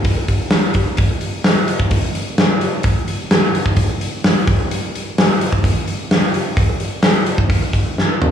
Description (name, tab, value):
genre	rock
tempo	129 BPM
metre	4/4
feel	straight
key	none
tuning	none
part	big rock drum kit	drums	0.0-8.3 s	hi-hat, kick drum, snare drum, toms	-14 LUFS	equal	none
room	moderate plate reverb, RT60 1.8 s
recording	live gig heard through the venue's PA, club reverb, small room ambience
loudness	-14 LUFS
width	side -8 dB against mid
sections	0.0-8.3 A section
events	drum fill 8.0-8.3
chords	none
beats	0.04 0.51 | 0.98 1.44 1.91 2.38 | 2.84 3.31 3.77 4.24 | 4.71 5.17 5.64 6.10 | 6.57 7.04 7.50 7.97